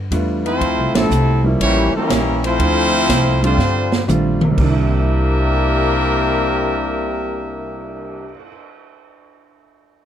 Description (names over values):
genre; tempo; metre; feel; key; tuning
jazz, big band swing; 121 BPM; 4/4; swing 69% on 8ths; C mixolydian; A4 = 437 Hz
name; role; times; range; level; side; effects
clear trombone section; second line; 0.0-8.3 s; C3 to E4; -22 LUFS; left 2 dB; none
upright bass; bass; 0.0-8.3 s; A1 to G2; -20 LUFS; equal; none
clear baby grand piano; accompaniment; 0.1-8.5 s; C3 to F4; -23 LUFS; right 1 dB; none
swinging big-band drum kit; drums; 0.1-8.4 s; crash cymbal, cymbal swell, hi-hat, kick drum, ride cymbal, snare drum, toms; -22 LUFS; right 2 dB; none
clear trumpet section; melody; 0.5-8.4 s; G3 to E5; -20 LUFS; equal; none
room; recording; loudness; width
little or no reverb; close, detailed microphones; -14 LUFS; side -9 dB against mid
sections
0.6-4.6 A section; 4.6-8.5 B section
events
band accent 0.9; drum fill 3.6-4.6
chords
0.0 G7; 0.6 Dm9; 1.6 A7b9b13; 2.6 Dm9; 3.6 G7sus4; 4.6 C9